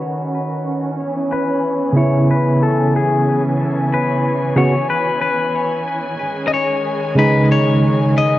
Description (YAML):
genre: trip hop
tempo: 92 BPM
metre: 4/4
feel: swing 56% on 16ths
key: C# minor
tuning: A4 = 439 Hz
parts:
  - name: semi-hollow electric guitar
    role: melody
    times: 0.0-8.4 s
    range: G#4 to D#5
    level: -20 LUFS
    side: left 4 dB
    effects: cassette tape, tape echo
  - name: rich studio string section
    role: sustained chords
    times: 0.0-8.4 s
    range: D#3 to G#5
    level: -22 LUFS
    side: right 1 dB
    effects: none
  - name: backwards swelling texture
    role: texture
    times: 0.0-8.4 s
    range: C#4 to C#5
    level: -27 LUFS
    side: right 2 dB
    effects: built-in reverb
  - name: bell-like tine electric piano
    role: accompaniment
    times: 1.9-8.4 s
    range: C#3 to F#4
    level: -15 LUFS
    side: right 1 dB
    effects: harmonic tremolo
room: moderate spring reverb, RT60 2.7 s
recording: home recording on cassette, vinyl crackle, low-pass filter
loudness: -14 LUFS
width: side -15 dB against mid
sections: 0.0-8.4 A section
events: filter sweep on string section 0.0-8.4; filter sweep 0.0-8.4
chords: 0.0 G#sus4 (rootless); 1.0 C#m7; 6.2 G#sus4